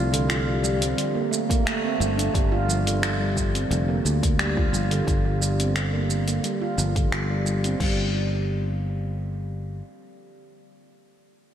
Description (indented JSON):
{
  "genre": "organic downtempo",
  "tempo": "88 BPM",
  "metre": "4/4",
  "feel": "straight",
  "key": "G minor",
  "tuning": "A4 = 439 Hz",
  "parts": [
    { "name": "handpan", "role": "arpeggios", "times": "0.0-8.1 s", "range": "D3 to F4", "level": "-26 LUFS", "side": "right 1 dB", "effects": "tape echo" },
    { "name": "sustaining fretless electric bass", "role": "bass", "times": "0.0-9.8 s", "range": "F1 to D2", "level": "-25 LUFS", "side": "equal", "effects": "tube saturation" },
    { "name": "deep house drum kit", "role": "drums", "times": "0.1-7.9 s", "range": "crash cymbal, finger snaps, hi-hat, shaker", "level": "-29 LUFS", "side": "equal", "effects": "none" },
    { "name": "electronic kick drum", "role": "drums", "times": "1.5-7.9 s", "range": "none", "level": "-25 LUFS", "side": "equal", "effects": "none" }
  ],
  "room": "moderate cathedral reverb, RT60 5.9 s",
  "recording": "dreamy mix soaked in reverb",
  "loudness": "-21 LUFS",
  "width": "side -10 dB against mid",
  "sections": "0.0-2.3 A section; 2.3-7.8 B section; 7.8-10.5 C section",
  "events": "none",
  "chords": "0.0 C5; 2.3 G7(no3); 7.8 N.C.",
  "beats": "0.30 0.98 1.66 | 2.34 3.02 3.71 4.39 | 5.07 5.75 6.43 7.12 | 7.80 8.48 9.16"
}